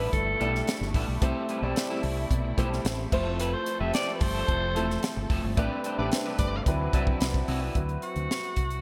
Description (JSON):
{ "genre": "polished 1980s jazz-funk pop", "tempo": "110 BPM", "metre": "4/4", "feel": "straight", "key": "unclear", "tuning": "A4 = 440 Hz", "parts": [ { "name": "growling alto saxophone", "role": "melody", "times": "0.0-8.8 s", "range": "F#4 to E5", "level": "-34 LUFS", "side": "equal", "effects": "delay" }, { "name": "warm concert grand piano", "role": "accompaniment", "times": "0.0-8.8 s", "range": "F#3 to D5", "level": "-35 LUFS", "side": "equal", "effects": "subtle chorus" }, { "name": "muted studio string section", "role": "sustained chords", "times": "0.0-7.7 s", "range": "B2 to B4", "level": "-42 LUFS", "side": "equal", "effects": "none" }, { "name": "electric guitar at the edge of break-up", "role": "riff", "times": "0.0-7.8 s", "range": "G3 to C5", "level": "-39 LUFS", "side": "equal", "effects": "subtle chorus" }, { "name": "fingered electric bass", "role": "bass", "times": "0.0-8.8 s", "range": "E1 to D2", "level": "-33 LUFS", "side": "equal", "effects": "none" }, { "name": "tight funk drum kit", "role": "drums", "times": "0.1-8.8 s", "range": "crash cymbal, hi-hat, kick drum, snare drum", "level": "-32 LUFS", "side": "equal", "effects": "gated reverb" }, { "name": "clear horn section", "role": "second line", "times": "5.6-6.6 s", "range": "G4 to D5", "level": "-40 LUFS", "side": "equal", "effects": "none" } ], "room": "moderate lush hall reverb, RT60 2.4 s", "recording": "bright 1980s-style digital production", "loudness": "-28 LUFS", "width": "mono", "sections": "0.0-7.8 A section; 7.8-8.8 B section", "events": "band accent 5.6-7.8", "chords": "0.0 G69; 1.2 C6; 3.1 Fmaj7; 5.6 Am11; 6.7 D13" }